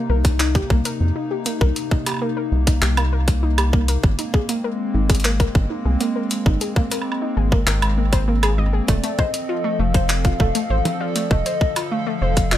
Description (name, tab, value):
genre	IDM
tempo	99 BPM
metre	4/4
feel	straight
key	unclear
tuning	A4 = 439 Hz
part	hollow soft pad	sustained chords	0.0-12.6 s	C3 to A4	-26 LUFS	left 1 dB	chorus, sidechain pumping
part	warbly dusty pluck	arpeggios	0.1-12.6 s	A3 to Eb5	-27 LUFS	left 2 dB	chorus, dub echo
part	rubbery square bass	bass	0.1-12.6 s	F1 to F2	-19 LUFS	equal	none
part	electronic kick drum	drums	0.2-12.5 s	none	-17 LUFS	equal	studio reverb
part	jungle sampler-style drum kit	drums	0.2-12.6 s	handclaps, hi-hat, toms, woodblock	-24 LUFS	right 1 dB	studio reverb
part	warbly nostalgic lead	melody	8.9-12.6 s	D5 to F5	-25 LUFS	left 1 dB	wide subtle chorus, digital delay
room	little or no reverb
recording	none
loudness	-17 LUFS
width	side -12 dB against mid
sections	0.0-12.6 A section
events	none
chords	0.0 Cm7; 4.0 Abadd9; 8.9 F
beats	0.40 1.00 | 1.61 2.22 2.82 3.43 | 4.04 4.64 5.25 5.85 | 6.46 7.07 7.67 8.28 | 8.88 9.49 10.10 10.70 | 11.31 11.91 12.52